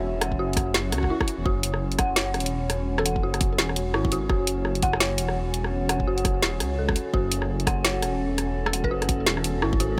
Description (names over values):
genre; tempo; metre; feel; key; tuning
half-time drum and bass; 169 BPM; 4/4; swing 60% on 16ths, half-time; F# minor; A4 = 439 Hz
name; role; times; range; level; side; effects
dark analog pad; sustained chords; 0.0-10.0 s; C#4 to E5; -36 LUFS; equal; chorus, sidechain pumping
dark detuned synth bell; arpeggios; 0.0-10.0 s; E4 to F#5; -32 LUFS; equal; chorus, vintage 12-bit sampler grit, tape echo
dark detuned saw bass; bass; 0.0-10.0 s; E1 to C#2; -31 LUFS; equal; tube saturation
metallic inharmonic drone; texture; 0.0-10.0 s; C#4; -38 LUFS; equal; chorus, built-in reverb
drum and bass drum kit; drums; 0.2-9.9 s; hi-hat, rim click, snare drum; -28 LUFS; equal; none
electronic kick drum; drums; 0.3-9.8 s; none; -28 LUFS; equal; none
swell; sound effects; 0.9-1.5 s; none; -38 LUFS; equal; none
mallet-like synth pluck; melody; 3.0-3.5, 8.7-9.3 s; A4 to B4; -37 LUFS; equal; chorus, phaser, delay
room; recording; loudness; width
light reverb, digital ambience; none; -25 LUFS; mono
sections
0.0-10.0 A section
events
swell 0.9-1.5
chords
0.0 F#5